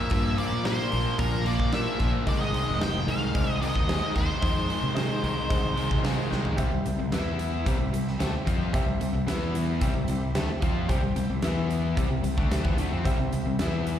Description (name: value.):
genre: classic rock.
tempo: 111 BPM.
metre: 4/4.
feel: straight.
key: unclear.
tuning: A4 = 440 Hz.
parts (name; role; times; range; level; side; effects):
octave-fuzz lead guitar; melody; 0.0-6.0 s; Bb4 to G5; -31 LUFS; equal; distortion, slapback echo.
tonewheel organ; sustained chords; 0.0-14.0 s; G3 to E5; -41 LUFS; equal; none.
cranked stack guitar; riff; 0.0-14.0 s; Ab2 to F4; -35 LUFS; right 10 dB; overdrive, slapback echo.
crunchy overdriven guitar; riff; 0.0-14.0 s; Ab2 to F4; -32 LUFS; left 12 dB; slapback echo.
overdriven electric guitar; riff; 0.0-6.6 s; Ab2 to Bb3; -34 LUFS; equal; slapback echo.
warm upright piano; accompaniment; 0.1-14.0 s; D4 to G5; -37 LUFS; right 2 dB; slapback echo.
fuzz fingered electric bass; bass; 0.1-14.0 s; F1 to C3; -29 LUFS; equal; overdrive.
big rock drum kit; drums; 0.1-14.0 s; hi-hat, kick drum, snare drum, toms; -30 LUFS; equal; none.
room: light reverb.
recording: live gig heard through the venue's PA, recital hall reverb.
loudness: -24 LUFS.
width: side -10 dB against mid.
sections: 0.0-6.6 A section; 6.6-14.0 B section.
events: drum fill 6.3.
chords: 0.0 Bb; 2.3 Ab; 6.6 C; 7.1 E5; 7.7 C; 9.3 E5; 9.8 C; 11.4 E5; 12.0 C.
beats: | 0.11 0.65 1.19 1.73 | 2.27 2.81 3.35 3.88 | 4.42 4.96 5.50 6.04 | 6.58 7.12 7.66 8.20 | 8.74 9.28 9.81 10.35 | 10.89 11.43 11.97 12.51 | 13.05 13.60.